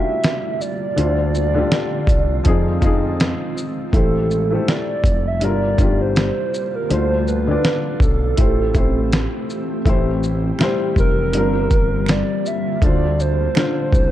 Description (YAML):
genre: lo-fi hip hop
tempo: 81 BPM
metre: 4/4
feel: swing 57% on 16ths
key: A phrygian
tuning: A4 = 441 Hz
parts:
  - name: warbly nostalgic lead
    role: melody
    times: 0.0-14.1 s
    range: A4 to E5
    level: -23 LUFS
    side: right 3 dB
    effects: chorus, low-pass filter
  - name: warm upright piano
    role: accompaniment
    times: 0.0-14.1 s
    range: D3 to D5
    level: -23 LUFS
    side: left 3 dB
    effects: low-pass filter
  - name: granular cloud pad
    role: sustained chords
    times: 0.0-14.1 s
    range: D3 to F4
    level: -26 LUFS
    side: equal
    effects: built-in reverb, low-pass filter
  - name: dusty soul sampler-style drum kit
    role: drums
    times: 0.2-14.1 s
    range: hi-hat, kick drum, shaker, snare drum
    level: -18 LUFS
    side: equal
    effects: none
  - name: smooth gliding synth bass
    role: bass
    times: 1.0-14.1 s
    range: F1 to F2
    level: -21 LUFS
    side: equal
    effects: none
  - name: finger snap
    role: percussion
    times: 10.6-13.8 s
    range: none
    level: -35 LUFS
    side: right 8 dB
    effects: none
room: light reverb, digital ambience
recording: dark, warm production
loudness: -16 LUFS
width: side -13 dB against mid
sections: 0.0-9.9 A section; 9.9-14.1 B section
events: break 0.0-1.0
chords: 0.0 Gm7; 1.0 Dm7; 2.4 Fm7; 3.9 Am7; 5.4 Gm7; 6.9 Dm7; 8.4 Am7; 11.3 Gm7; 12.8 Dm7